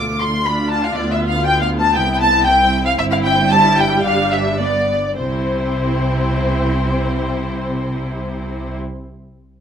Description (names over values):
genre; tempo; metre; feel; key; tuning
quick classical-period movement for string orchestra; 102-122 BPM; 4/4; rubato; C major; A4 = 441 Hz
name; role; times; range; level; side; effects
warm studio violin section; melody; 0.0-8.8 s; C5 to D6; -19 LUFS; left 1 dB; none
warm studio violin section; second line; 0.0-8.8 s; C4 to C6; -22 LUFS; left 3 dB; none
rich studio viola section; accompaniment; 0.0-8.8 s; G3 to F4; -23 LUFS; right 1 dB; none
warm studio cello section; bass; 0.0-8.8 s; C2 to C3; -23 LUFS; right 1 dB; none
warm studio double bass section; bass; 0.0-8.8 s; G1 to D2; -24 LUFS; right 1 dB; none
room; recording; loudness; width
light reverb; none; -15 LUFS; side -8 dB against mid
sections
0.0-5.2 A section; 5.2-9.5 B section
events
slowing down 0.0-5.2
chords
0.0 Dm; 1.0 Bdim/D; 2.0 C; 3.0 C/G; 4.0 G; 5.2 C